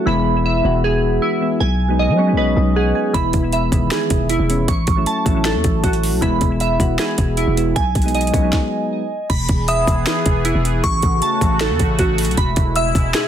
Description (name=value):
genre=hip hop, trap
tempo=156 BPM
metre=4/4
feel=half-time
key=E major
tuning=A4 = 440 Hz
part: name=soft electric-piano-like synth keys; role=accompaniment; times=0.0-9.0 s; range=D#3 to G#5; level=-21 LUFS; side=left 2 dB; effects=chorus, low-pass filter
part: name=glassy digital keys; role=arpeggios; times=0.0-13.3 s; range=E4 to C#6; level=-20 LUFS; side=right 3 dB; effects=chorus, low-pass filter, ping-pong delay
part: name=growling 808-style bass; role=bass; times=0.1-13.1 s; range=E1 to F#3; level=-19 LUFS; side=equal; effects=none
part: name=trap drum kit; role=drums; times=3.1-13.2 s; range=crash cymbal, finger snaps, hi-hat, kick drum, snare drum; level=-20 LUFS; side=equal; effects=none
part: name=sweeping resonant pad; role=sustained chords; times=9.3-13.3 s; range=B2 to G#4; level=-24 LUFS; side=left 1 dB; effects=chorus
part: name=delicate synth tine bell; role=second line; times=9.7-13.3 s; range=C#6 to E6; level=-25 LUFS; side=left 5 dB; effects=chorus, ping-pong delay
room=digital ambience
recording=dense, heavily limited modern master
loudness=-15 LUFS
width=side -10 dB against mid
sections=0.0-9.3 A section; 9.3-13.3 B section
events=synth keys fill 2.0-3.1; stop 8.5-9.3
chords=0.1 E; 1.6 B6; 3.1 E; 4.7 A6; 6.2 E; 7.8 B6; 9.3 E; 10.8 A6; 12.4 E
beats=| 0.07 0.45 0.84 1.22 | 1.61 1.99 2.38 2.76 | 3.15 3.53 3.91 4.30 | 4.68 5.07 5.45 5.84 | 6.22 6.61 6.99 7.38 | 7.76 8.14 8.53 8.91 | 9.30 9.68 10.07 10.45 | 10.84 11.22 11.61 11.99 | 12.38 12.76 13.14